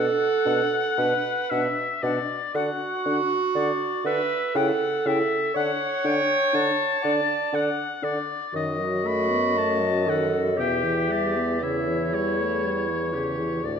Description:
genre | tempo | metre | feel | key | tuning
classical, slow romantic movement for wind quintet | 59 BPM | 3/4 | rubato | B minor | A4 = 441 Hz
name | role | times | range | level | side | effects
silver concert flute | melody | 0.0-13.8 s | C#5 to G5 | -31 LUFS | left 8 dB | none
bright oboe | second line | 0.0-13.8 s | C#5 to B5 | -28 LUFS | left 6 dB | none
mellow French horn | accompaniment | 0.0-13.8 s | A2 to E4 | -32 LUFS | left 2 dB | none
mellow clarinet | accompaniment | 0.0-13.8 s | E4 to D5 | -26 LUFS | right 4 dB | none
mellow bassoon | bass | 0.0-13.8 s | D2 to D3 | -28 LUFS | right 1 dB | none
room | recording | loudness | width
wet recital hall reverb, RT60 1.4 s | dark, warm production | -22 LUFS | side -7 dB against mid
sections
0.0-13.8 A section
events
none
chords
0.0 Bm; 2.5 D; 4.5 A7/C#; 5.6 D; 8.5 B7/F#; 10.6 Em; 11.6 A7/E

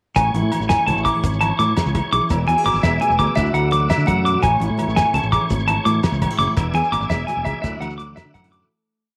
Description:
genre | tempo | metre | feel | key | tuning
highlife guitar band | 113 BPM (dotted quarters) | 12/8 | straight | A major | A4 = 439 Hz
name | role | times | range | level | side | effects
fingerpicked steel-string acoustic guitar | accompaniment | 0.2-9.2 s | A2 to A4 | -29 LUFS | equal | none
tonewheel organ | sustained chords | 0.2-8.7 s | F#4 to G#5 | -33 LUFS | equal | slow rotary speaker, chorus vibrato
clean electric guitar | arpeggios | 0.2-8.6 s | E5 to D6 | -22 LUFS | equal | slapback echo
fingered electric bass | bass | 0.2-8.6 s | E1 to D3 | -25 LUFS | equal | none
cloth-damped thuddy drum kit | drums | 0.2-8.6 s | hi-hat, kick drum, snare drum | -28 LUFS | equal | none
agogo bells | percussion | 0.2-8.5 s | none | -32 LUFS | equal | none
congas | percussion | 0.2-8.7 s | none | -32 LUFS | equal | none
shekere | percussion | 0.2-8.7 s | none | -29 LUFS | equal | none
room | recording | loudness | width
moderate plate reverb, RT60 1.3 s, studio ambience | none | -19 LUFS | mono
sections
0.2-8.7 groove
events
fade-out 6.6-8.7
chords
0.2 Amaj7; 2.3 E7; 3.4 Dadd9; 4.4 Amaj7; 6.6 E7; 7.6 Dadd9

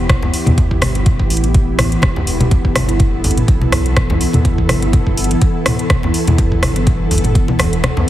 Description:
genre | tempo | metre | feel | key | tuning
afro house | 124 BPM | 4/4 | swing 55% on 16ths | E minor pentatonic | A4 = 439 Hz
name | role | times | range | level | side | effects
ethereal airy pad | sustained chords | 0.0-8.1 s | E3 to A4 | -19 LUFS | equal | ensemble chorus, built-in reverb, sidechain pumping
round analog bass | bass | 0.0-7.9 s | E1 to E2 | -18 LUFS | equal | sidechain pumping
afro-pop drum kit | drums | 0.1-7.9 s | hi-hat, rim click, toms | -20 LUFS | equal | studio reverb
electronic kick drum | drums | 0.1-7.5 s | none | -14 LUFS | equal | studio reverb
congas | percussion | 0.1-8.1 s | none | -19 LUFS | left 1 dB | none
room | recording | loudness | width
little or no reverb | heavily compressed radio sound | -12 LUFS | side -13 dB against mid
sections
0.0-8.1 A section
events
kick drops out 7.8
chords
0.0 Em

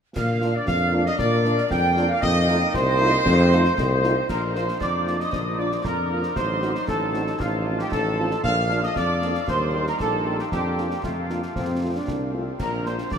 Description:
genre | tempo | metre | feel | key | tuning
military-style march for wind band | 116 BPM | 2/4 | straight | Bb major | A4 = 438 Hz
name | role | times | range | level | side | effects
warm trumpet section | melody | 0.2-13.2 s | F4 to G5 | -28 LUFS | right 1 dB | none
bright large flute ensemble | second line | 0.2-13.2 s | C5 to F6 | -28 LUFS | right 1 dB | none
warm woodwind section | second line | 0.2-13.2 s | F4 to G5 | -30 LUFS | left 2 dB | none
clear trombone section | sustained chords | 0.2-13.2 s | F3 to Eb4 | -31 LUFS | right 1 dB | stereo widening
warm tuba | bass | 0.2-13.2 s | A1 to Bb2 | -24 LUFS | equal | none
concert snare drum, clash cymbals and concert bass drum | drums | 0.2-13.2 s | none | -33 LUFS | equal | none
mellow French horn section | accompaniment | 0.4-12.9 s | A3 to G4 | -32 LUFS | right 2 dB | none
room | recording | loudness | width
wet huge ambient reverb, RT60 8.1 s | in a vast, echoing space | -20 LUFS | side -7 dB against mid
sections
0.2-4.3 A section; 4.3-13.2 B section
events
none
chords
0.2 Bb; 2.2 F7; 4.3 Bb; 6.4 Adim7; 7.4 F7/A; 8.4 Bb; 9.5 Eb; 10.5 Bb/F; 11.6 F; 12.6 Bb

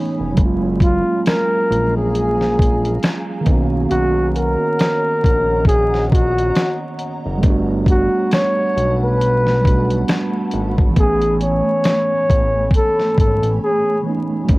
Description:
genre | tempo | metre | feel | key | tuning
lo-fi hip hop | 68 BPM | 4/4 | swing 57% on 16ths | unclear | A4 = 438 Hz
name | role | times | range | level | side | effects
mellow tine electric piano | accompaniment | 0.0-14.6 s | D#3 to G#5 | -22 LUFS | right 2 dB | medium stereo tremolo, cassette tape
granular cloud pad | sustained chords | 0.0-14.6 s | A3 to B5 | -30 LUFS | left 1 dB | built-in reverb, cassette tape
fat analog bass | bass | 0.2-14.6 s | E#1 to B1 | -20 LUFS | equal | none
dusty soul sampler-style drum kit | drums | 0.4-14.6 s | hi-hat, kick drum, snare drum | -16 LUFS | equal | vintage 12-bit sampler grit, cassette tape
warm flugelhorn | melody | 0.8-14.0 s | E#4 to C#5 | -18 LUFS | equal | cassette tape
room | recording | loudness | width
light reverb | home recording on cassette, vinyl crackle | -14 LUFS | side -21 dB against mid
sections
0.4-14.5 A section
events
break 13.6-14.5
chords
0.4 F#maj9; 3.5 Bmaj9; 7.4 Gmaj9; 11.0 Amaj9

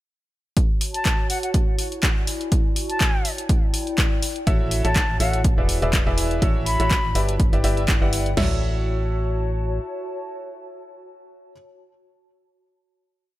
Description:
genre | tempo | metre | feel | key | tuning
piano house | 123 BPM | 4/4 | swing 55% on 16ths | A major | A4 = 440 Hz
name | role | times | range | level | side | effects
punchy analog drum machine | drums | 0.6-8.5 s | crash cymbal, kick drum, snare drum, toms | -21 LUFS | equal | none
punchy analog drum machine | drums | 0.6-8.3 s | handclaps, hi-hat | -26 LUFS | left 1 dB | none
warbly tape-like pad | texture | 0.9-11.7 s | E4 to A5 | -31 LUFS | left 1 dB | chorus, built-in reverb, sidechain pumping
concert flute | melody | 0.9-7.2 s | F#5 to B5 | -28 LUFS | left 2 dB | tape echo
bright baby grand piano | riff | 4.5-11.5 s | E4 to F#5 | -28 LUFS | equal | sidechain pumping, tape echo
organ-like FM bass | bass | 4.5-9.8 s | E1 to A1 | -24 LUFS | equal | sidechain pumping
room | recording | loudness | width
little or no reverb | none | -19 LUFS | side -16 dB against mid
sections
0.6-8.4 groove; 8.4-12.3 final chord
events
none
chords
0.6 A6; 1.5 E7; 2.5 A6; 3.2 Em7; 4.5 A6; 5.4 E7; 6.4 A6; 7.2 Em7/G; 8.4 A6

